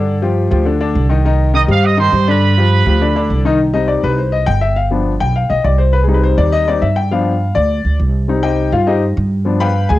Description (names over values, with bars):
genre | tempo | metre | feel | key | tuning
latin, salsa | 204 BPM | 4/4 | straight | C harmonic minor | A4 = 440 Hz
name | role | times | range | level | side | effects
clear baby grand piano | accompaniment | 0.0-10.0 s | D3 to B5 | -16 LUFS | left 4 dB | none
upright bass | bass | 0.0-10.0 s | G1 to G2 | -14 LUFS | right 1 dB | none
bright trumpet section | melody | 1.6-3.3 s | B4 to Eb6 | -16 LUFS | right 6 dB | none
room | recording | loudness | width
light reverb, studio reverb | home recording on cassette | -12 LUFS | side -15 dB against mid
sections
0.0-3.6 A section; 3.6-10.0 B section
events
grand piano solo 3.6-10.0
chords
0.1 G5; 3.6 Cm; 4.8 G7; 5.9 Cm; 7.1 G7; 8.3 Cm; 9.5 G7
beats
| 0.07 0.37 0.66 0.95 | 1.25 1.54 1.83 2.13 | 2.42 2.71 3.01 3.30 | 3.60 3.89 4.18 4.47 | 4.77 5.06 5.36 5.65 | 5.94 6.24 6.53 6.82 | 7.12 7.41 7.70 8.00 | 8.29 8.58 8.88 9.17 | 9.46 9.76